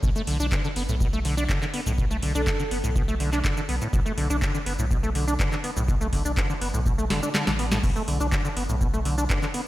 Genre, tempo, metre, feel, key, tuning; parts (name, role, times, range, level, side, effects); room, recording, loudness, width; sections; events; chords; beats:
acid house; 123 BPM; 4/4; straight; B minor pentatonic; A4 = 440 Hz
acid bass, saw; riff; 0.0-9.6 s; A2 to D4; -28 LUFS; equal; analog chorus, cassette tape, sidechain pumping, tape echo
saturated sub bass; bass; 0.0-9.3 s; F#1 to B1; -28 LUFS; equal; tube saturation, sidechain pumping
booming analog drum machine; drums; 0.0-9.6 s; crash cymbal, handclaps, hi-hat, shaker, snare drum; -30 LUFS; equal
electronic kick drum; drums; 0.0-9.4 s; -26 LUFS; equal
breathy flute-like synth lead; melody; 2.4-2.7 s; A4; -34 LUFS; right 3 dB; chorus, cassette tape, diffuse ambient delay
moderate lush hall reverb, RT60 1.6 s; dreamy mix soaked in reverb; -22 LUFS; side -16 dB against mid
0.0-9.7 A section
drum fill 7.1-7.8; kick drops out 7.3-7.8
0.0 Bm7
| 0.03 0.52 1.00 1.49 | 1.98 2.47 2.96 3.44 | 3.93 4.42 4.91 5.39 | 5.88 6.37 6.86 7.35 | 7.83 8.32 8.81 9.30